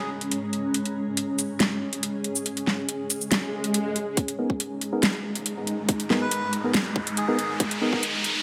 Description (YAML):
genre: deep dubstep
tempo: 140 BPM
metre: 4/4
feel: half-time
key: G# minor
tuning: A4 = 439 Hz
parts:
  - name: melodica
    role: melody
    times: 0.0-0.1, 6.2-7.5 s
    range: G#4 to B4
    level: -36 LUFS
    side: equal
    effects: dub echo
  - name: granular cloud pad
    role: sustained chords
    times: 0.0-8.4 s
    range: G#3 to A#5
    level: -32 LUFS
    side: equal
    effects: built-in reverb
  - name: dubstep drum kit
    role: drums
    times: 0.2-8.3 s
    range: hi-hat, shaker, snare drum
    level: -28 LUFS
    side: equal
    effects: none
  - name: swell and riser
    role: sound effects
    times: 3.4-8.4 s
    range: none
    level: -32 LUFS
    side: equal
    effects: none
  - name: electronic kick drum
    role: drums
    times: 4.2-8.0 s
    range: none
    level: -28 LUFS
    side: equal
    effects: overdrive, high-pass filter on kick
  - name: percussive organ stab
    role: stabs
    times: 4.4-7.9 s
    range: B3 to A#4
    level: -31 LUFS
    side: equal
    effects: chorus, dub echo
room: moderate echo chamber reverb, RT60 2.0 s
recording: high-pass filter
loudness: -26 LUFS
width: mono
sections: 0.0-4.2 A section; 4.2-8.4 B section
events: filter sweep on drum 0.0-4.2; swell 3.4-4.2; build-up 4.2-8.4; riser 4.2-8.4; filter sweep on synth stab 4.2-8.4; filter sweep 4.2-8.4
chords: 0.0 G#sus2; 4.2 G#madd9